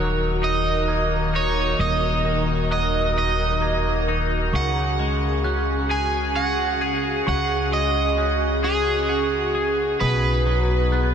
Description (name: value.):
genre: rock.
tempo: 44 BPM (dotted quarters).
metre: 6/8.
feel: straight.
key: unclear.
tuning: A4 = 440 Hz.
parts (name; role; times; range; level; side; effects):
overdriven semi-hollow guitar; melody; 0.0-11.1 s; Ab4 to Ab5; -24 LUFS; right 3 dB; diffuse ambient delay.
airy breathy pad; sustained chords; 0.0-11.1 s; Db3 to Bb4; -27 LUFS; equal; chorus.
glockenspiel with soft plastic mallets; arpeggios; 0.0-11.1 s; Db6 to Ab6; -32 LUFS; right 3 dB; diffuse ambient delay.
twangy electric guitar; arpeggios; 0.0-11.1 s; Eb2 to Ab4; -27 LUFS; left 2 dB; analog chorus, diffuse ambient delay.
upright bass; bass; 0.0-11.1 s; Eb1 to Db2; -25 LUFS; equal; none.
room: wet huge ambient reverb, RT60 7.6 s.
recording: dreamy mix soaked in reverb.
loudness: -19 LUFS.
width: side -8 dB against mid.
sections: 0.0-11.1 A section.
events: none.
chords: 0.0 Ebm; 4.5 Dbsus4; 10.0 B.